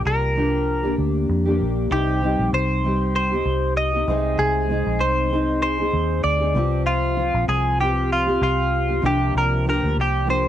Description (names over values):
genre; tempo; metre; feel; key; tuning
acoustic pop; 97 BPM; 4/4; swing 55% on 16ths; C minor; A4 = 439 Hz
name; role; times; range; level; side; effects
fingerpicked steel-string acoustic guitar; accompaniment; 0.0-10.5 s; C3 to Ab4; -24 LUFS; left 1 dB; double-tracked left and right, cassette tape
vintage muted fingered electric bass; bass; 0.0-10.5 s; Bb1 to F2; -23 LUFS; equal; none
direct-recorded clean electric guitar; melody; 0.1-10.5 s; F4 to Eb5; -22 LUFS; equal; analog chorus
room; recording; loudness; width
small room ambience; home recording on cassette; -18 LUFS; side -11 dB against mid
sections
0.0-10.5 A section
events
none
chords
0.0 Gm7; 1.9 Cm; 4.1 Ab; 6.6 Fsus2; 9.0 Gm7/C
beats
0.04 0.66 1.28 | 1.90 2.52 3.14 3.76 | 4.38 5.00 5.62 6.24 | 6.86 7.48 8.10 8.72 | 9.34 9.96